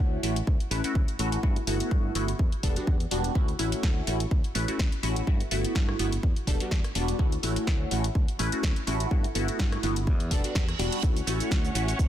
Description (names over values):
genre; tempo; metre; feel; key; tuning
filtered disco house; 125 BPM; 4/4; swing 54% on 16ths; D major; A4 = 440 Hz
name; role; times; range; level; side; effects
funky polysynth comp; accompaniment; 0.0-11.9 s; G3 to B4; -30 LUFS; equal; chorus, phaser, sidechain pumping, low-pass filter
fingered electric bass; bass; 0.0-12.1 s; E1 to G2; -31 LUFS; equal; sidechain pumping, low-pass filter
house drum kit; drums; 0.2-12.1 s; hi-hat, rim click, shaker, snare drum; -34 LUFS; left 1 dB; sidechain pumping on hats, studio reverb, sidechain pumping on perc
electronic kick drum; drums; 0.5-12.1 s; none; -26 LUFS; equal; studio reverb
reverse cymbal; sound effects; 10.3-11.0 s; none; -38 LUFS; right 7 dB; none
warm symphonic violin section; sustained chords; 11.0-12.1 s; C#4 to F#5; -35 LUFS; equal; sidechain pumping, low-pass filter
room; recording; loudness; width
digital ambience; dense, heavily limited modern master; -24 LUFS; side -11 dB against mid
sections
0.0-12.1 A section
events
reverse cymbal 10.3-11.0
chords
0.0 Dmaj7; 1.4 Gmaj13; 2.4 Em9; 3.4 Dmaj7; 5.3 Gmaj13; 6.2 Em9; 7.2 Dmaj7; 9.1 Gmaj13; 10.1 Em9; 11.0 Dmaj7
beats
0.47 0.95 | 1.44 1.92 2.40 2.88 | 3.35 3.83 4.32 4.79 | 5.28 5.75 6.24 6.71 | 7.20 7.67 8.15 8.63 | 9.12 9.60 10.07 10.55 | 11.04 11.52 11.99